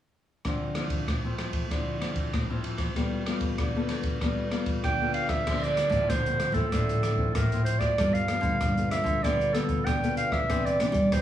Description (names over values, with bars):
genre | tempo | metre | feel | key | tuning
samba and choro | 96 BPM | 4/4 | straight | D minor | A4 = 439 Hz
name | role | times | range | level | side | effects
open jazz drum kit | drums | 0.4-11.2 s | crash cymbal, hi-hat, kick drum, ride cymbal, rim click | -30 LUFS | equal | none
nylon-string guitar | accompaniment | 0.5-11.2 s | G2 to A4 | -31 LUFS | left 3 dB | none
warm clarinet | melody | 4.8-11.2 s | A4 to G5 | -27 LUFS | right 2 dB | none
nylon-string guitar | bass | 5.5-11.2 s | G2 to G3 | -29 LUFS | equal | none
room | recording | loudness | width
wet large studio reverb, RT60 0.9 s | heard from further back in the room, small room reverb | -25 LUFS | side -11 dB against mid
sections
0.4-5.5 A section; 5.5-11.2 B section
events
none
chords
0.4 Dm9; 3.0 G9; 5.5 Dm9; 8.0 G9; 10.5 Cmaj9